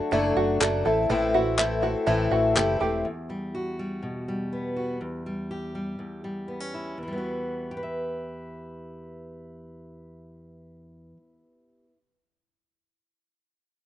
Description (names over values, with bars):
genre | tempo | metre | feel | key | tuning
indie folk with a building arrangement | 122 BPM | 4/4 | straight | E minor | A4 = 440 Hz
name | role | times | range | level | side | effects
picked twelve-string acoustic guitar | accompaniment | 0.0-3.1 s | A2 to F#4 | -23 LUFS | left 3 dB | slapback echo
open-back banjo | arpeggios | 0.0-3.0 s | E4 to A4 | -28 LUFS | right 8 dB | none
deep dub fingered electric bass | bass | 0.1-3.0 s | E1 to A1 | -30 LUFS | right 1 dB | none
group handclap | percussion | 0.6-2.7 s | none | -26 LUFS | left 2 dB | none
fingerpicked steel-string acoustic guitar | accompaniment | 3.0-12.0 s | E2 to E5 | -33 LUFS | equal | slapback echo
room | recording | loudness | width
little or no reverb | recorded outdoors, with no room sound, nothing above 10.6 kHz | -25 LUFS | side -12 dB against mid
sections
0.0-3.0 A section; 3.0-7.0 B section; 7.0-10.9 C section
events
none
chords
0.0 D/F#; 0.9 Am; 3.0 Emadd9; 5.0 Em6; 7.0 Emadd9